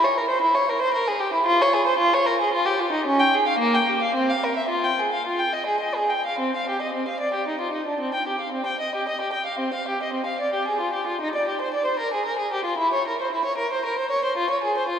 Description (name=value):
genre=classical, baroque-style suite movement for unaccompanied violin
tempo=113 BPM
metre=3/4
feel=rubato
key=F minor, C minor from 6.4 s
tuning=A4 = 440 Hz
part: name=dark violin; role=solo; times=0.0-15.0 s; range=Bb3 to G5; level=-21 LUFS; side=equal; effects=none
room=wet church reverb, RT60 3.5 s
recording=heard from further back in the room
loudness=-21 LUFS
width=side -8 dB against mid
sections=0.0-6.4 A section; 6.4-15.0 A section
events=none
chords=none